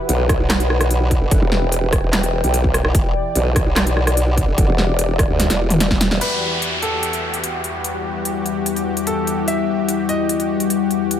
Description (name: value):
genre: heavy wobble dubstep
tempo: 147 BPM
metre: 4/4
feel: half-time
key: E minor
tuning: A4 = 440 Hz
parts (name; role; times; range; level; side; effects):
- lush unison pad; sustained chords; 0.0-11.2 s; E2 to D5; -25 LUFS; left 1 dB; chorus, sidechain pumping
- deep dark ambient pad; texture; 0.0-11.2 s; G3 to B5; -24 LUFS; left 5 dB; chorus, built-in reverb, sidechain pumping
- formant-sweep wobble bass; bass; 0.1-6.2 s; E1 to D2; -18 LUFS; equal; chorus, overdrive
- big-room dance drum kit; drums; 0.1-11.2 s; crash cymbal, handclaps, hi-hat, rim click, snare drum, toms; -21 LUFS; equal; overdrive, studio ambience
- electronic kick drum; drums; 0.3-6.0 s; none; -19 LUFS; equal; overdrive, studio ambience
- formant-sweep wobble bass; bass; 0.4-6.1 s; E1 to B1; -18 LUFS; equal; chorus, overdrive
- warm baby grand piano; melody; 6.2-10.6 s; A4 to E5; -25 LUFS; equal; ping-pong delay
- downlifter; sound effects; 6.2-9.5 s; none; -25 LUFS; equal; none
room: light reverb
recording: none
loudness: -16 LUFS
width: side -10 dB against mid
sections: 0.0-6.2 A section; 6.2-11.2 B section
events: drop 0.0-6.2; drum fill 5.4-6.2; band accent 6.1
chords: 0.0 Em; 6.2 Emadd9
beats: 0.09 0.50 0.91 | 1.31 1.72 2.13 2.54 | 2.95 3.35 3.76 4.17 | 4.58 4.99 5.39 5.80 | 6.21 6.62 7.03 7.44 | 7.84 8.25 8.66 9.07 | 9.48 9.88 10.29 10.70 | 11.11